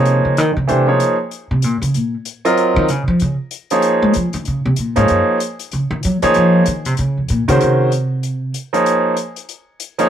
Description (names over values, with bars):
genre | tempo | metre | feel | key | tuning
modal jazz | 191 BPM | 4/4 | swing 62% on 8ths | Eb dorian | A4 = 439 Hz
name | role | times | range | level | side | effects
clear grand piano | accompaniment | 0.0-10.1 s | Eb3 to Eb5 | -14 LUFS | right 1 dB | none
upright bass | bass | 0.0-8.5 s | F2 to Ab3 | -16 LUFS | equal | none
hi-hat | drums | 0.1-10.0 s | none | -29 LUFS | left 11 dB | none
room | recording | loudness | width
light reverb, small room reverb | 1960s-style stereo | -14 LUFS | side -9 dB against mid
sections
0.0-10.1 A section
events
upright bass solo 0.0-10.1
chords
0.0 Eb9sus4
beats
| 0.05 0.36 0.68 0.99 | 1.30 1.62 1.94 2.25 | 2.56 2.88 3.19 3.51 | 3.82 4.14 4.45 4.77 | 5.08 5.40 5.71 6.03 | 6.34 6.66 6.97 7.29 | 7.60 7.91 8.23 8.54 | 8.86 9.17 9.48 9.80